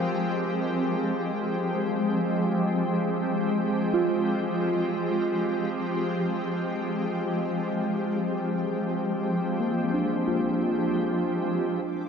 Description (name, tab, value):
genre	ambient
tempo	free time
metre	none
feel	none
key	F dorian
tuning	A4 = 440 Hz
part	shimmering ambient pad	sustained chords	0.0-12.1 s	F3 to G4	-25 LUFS	equal	chorus, built-in reverb
part	muted felt-like synth keys	arpeggios	0.0-12.1 s	Bb3 to G5	-31 LUFS	right 2 dB	chorus, tape echo
part	warm symphonic violin section	texture	11.9-12.1 s	D6	-52 LUFS	left 2 dB	none
room	wet huge ambient reverb, RT60 7.8 s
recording	dark, warm production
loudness	-24 LUFS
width	side -6 dB against mid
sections	0.0-11.9 A section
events	none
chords	0.0 Fm69